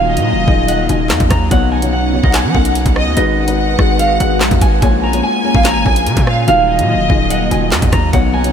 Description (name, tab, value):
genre	hip hop, drill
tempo	145 BPM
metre	4/4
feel	half-time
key	unclear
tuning	A4 = 440 Hz
part	nylon-string guitar	melody	0.0-8.5 s	D#5 to Bb5	-18 LUFS	right 3 dB	low-pass filter, ping-pong delay
part	dark concert grand piano	accompaniment	0.0-8.5 s	B2 to C#5	-19 LUFS	left 6 dB	low-pass filter
part	airy breathy pad	sustained chords	0.0-8.5 s	Eb3 to F5	-21 LUFS	right 1 dB	chorus
part	distorted 808-style bass	bass	0.0-8.5 s	Eb1 to F#3	-17 LUFS	equal	distortion
part	warm symphonic violin section	second line	0.1-8.5 s	Eb5 to Ab5	-21 LUFS	equal	ping-pong delay
part	drill drum kit	drums	0.2-8.5 s	handclaps, hi-hat, kick drum, rim click, snare drum	-16 LUFS	equal	none
room	moderate huge ambient reverb, RT60 6.6 s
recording	dreamy mix soaked in reverb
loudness	-11 LUFS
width	side -8 dB against mid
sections	0.0-8.5 A section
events	none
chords	0.0 Ebmadd9; 1.5 Badd9; 3.2 Abm7; 4.8 Bbm7; 6.5 Ebmadd9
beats	0.27 0.69 1.10 | 1.51 1.93 2.34 2.75 | 3.17 3.58 4.00 4.41 | 4.82 5.24 5.65 6.06 | 6.48 6.89 7.30 7.72 | 8.13